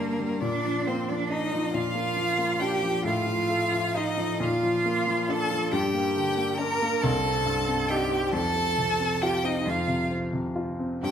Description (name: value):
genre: classical, slow romantic movement for piano trio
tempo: 45 BPM (dotted quarters)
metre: 6/8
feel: rubato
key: unclear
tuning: A4 = 438 Hz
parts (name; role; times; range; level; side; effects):
- rich violin; melody; 0.0-11.1 s; Bb4 to Bb5; -31 LUFS; left 5 dB; none
- clear cello; second line; 0.0-11.1 s; Bb3 to Bb4; -27 LUFS; right 4 dB; none
- dark baby grand piano; accompaniment; 0.0-11.1 s; C2 to F4; -28 LUFS; left 1 dB; none
room: wet recital hall reverb, RT60 1.3 s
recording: none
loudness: -24 LUFS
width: side -8 dB against mid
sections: 0.0-11.1 A section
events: none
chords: 0.4 Bb; 3.1 F/A; 4.4 Bb; 5.7 Gm; 7.0 Cm; 8.4 F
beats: | 0.43 1.75 | 3.06 4.41 | 5.73 7.04 | 8.35 9.67 | 11.03